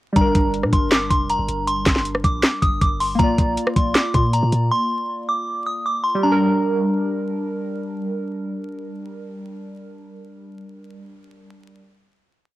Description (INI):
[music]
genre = hip hop, trap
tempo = 158 BPM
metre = 4/4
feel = half-time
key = G minor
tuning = A4 = 440 Hz
[part]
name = warbly lo-fi synth keys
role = accompaniment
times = 0.1-11.8 s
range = G3 to D5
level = -24 LUFS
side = equal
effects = chorus, phaser, low-pass filter, cassette tape
[part]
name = delicate synth tine bell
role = melody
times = 0.2-7.3 s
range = Bb5 to Eb6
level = -22 LUFS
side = equal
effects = chorus, low-pass filter, cassette tape
[part]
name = warm 808-style bass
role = bass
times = 0.2-4.7 s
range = F1 to Bb2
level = -24 LUFS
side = equal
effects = none
[part]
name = trap drum kit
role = drums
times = 0.2-4.6 s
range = handclaps, hi-hat, kick drum, rim click, snare drum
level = -19 LUFS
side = equal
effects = none
[sound]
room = little or no reverb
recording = home recording on cassette, vinyl crackle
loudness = -18 LUFS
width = side -16 dB against mid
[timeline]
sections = 0.2-6.2 hook; 6.2-9.3 final chord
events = none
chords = 0.2 Gm; 3.2 Bb; 6.2 Gm